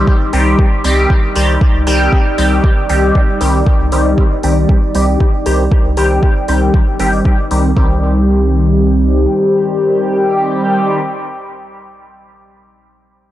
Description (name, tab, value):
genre	dub techno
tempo	117 BPM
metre	4/4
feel	straight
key	C minor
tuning	A4 = 441 Hz
part	deep dark ambient pad	sustained chords	0.0-11.0 s	G3 to D5	-22 LUFS	right 1 dB	chorus, built-in reverb, sidechain pumping
part	resonant sweep polysynth	stabs	0.0-11.0 s	Eb3 to G4	-14 LUFS	equal	chorus, phaser, sidechain pumping, dub echo
part	soft dub sub bass	bass	0.0-9.3 s	G1 to C2	-14 LUFS	equal	sidechain pumping
part	electronic kick drum	drums	0.1-7.9 s	none	-12 LUFS	equal	none
part	electronic hi-hat	drums	0.3-7.6 s	none	-28 LUFS	left 1 dB	none
room	light reverb, digital ambience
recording	dry, gritty hardware recording, transformer saturation, cassette tape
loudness	-10 LUFS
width	side -13 dB against mid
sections	0.0-7.8 A section; 7.8-11.9 B section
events	filter sweep on analog polysynth 0.0-7.8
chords	0.0 Cm